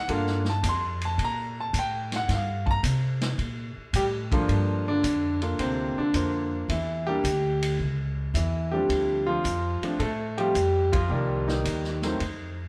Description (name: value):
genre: jazz piano trio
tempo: 109 BPM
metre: 4/4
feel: swing 69% on 8ths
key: G minor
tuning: A4 = 440 Hz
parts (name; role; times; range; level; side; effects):
- clear upright piano; melody; 0.0-12.5 s; G2 to C6; -29 LUFS; equal; none
- upright bass; bass; 0.1-12.7 s; C2 to C3; -31 LUFS; equal; none
- vintage drum kit; drums; 0.1-12.4 s; hi-hat, kick drum, ride cymbal, snare drum; -36 LUFS; equal; none
room: wet stone room reverb, RT60 1.1 s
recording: band playing live in one room, faint mains hum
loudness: -27 LUFS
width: mono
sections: 0.0-4.5 A section; 4.5-12.7 B section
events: upright piano solo 0.0-4.5; band accent 10.8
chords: 0.1 Gm7; 6.7 Em7; 7.8 A7 (rootless); 8.9 Dm7; 11.1 Cm7